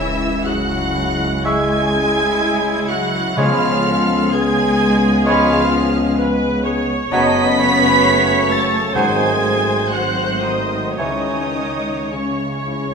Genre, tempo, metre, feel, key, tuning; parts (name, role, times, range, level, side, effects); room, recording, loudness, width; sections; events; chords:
classical; 53-67 BPM; 4/4; rubato; C# minor; A4 = 440 Hz
muted chamber violin section; melody; 0.0-12.9 s; C#6 to B6; -23 LUFS; right 2 dB
muted symphonic violin section; second line; 0.0-12.9 s; C#5 to B5; -24 LUFS; right 1 dB
warm clarinet; second line; 0.0-12.9 s; C#4 to B4; -24 LUFS; left 1 dB
mellow French horn section; sustained chords; 0.0-12.9 s; G#3 to E4; -24 LUFS; left 2 dB
warm trombone section; sustained chords; 0.0-12.9 s; C#3 to G#3; -27 LUFS; right 2 dB
concert harp; arpeggios; 0.0-12.9 s; F#2 to B4; -26 LUFS; left 4 dB
muted symphonic cello section; bass; 0.0-12.9 s; C#3 to B3; -25 LUFS; left 1 dB
muted symphonic double bass section; bass; 0.0-12.9 s; F#1 to C#2; -25 LUFS; right 2 dB
timpani; percussion; 0.0-10.4 s; G#2 to C#3; -28 LUFS; right 1 dB
mellow flute section; second line; 1.4-11.5 s; G#5 to C#6; -26 LUFS; right 2 dB
clear oboe; second line; 1.5-11.4 s; B#4 to E5; -24 LUFS; right 1 dB
clear bassoon; accompaniment; 1.5-11.4 s; E3 to G#3; -24 LUFS; equal
muted studio viola section; accompaniment; 1.5-12.9 s; E4 to D#5; -23 LUFS; right 2 dB
wet stone room reverb, RT60 1.2 s; minimal, uncompressed stereo recording; -14 LUFS; side -5 dB against mid
0.0-12.9 A section
0.0 C#m; 3.4 C#7; 7.1 F#m; 9.0 G#7b9; 11.0 C#m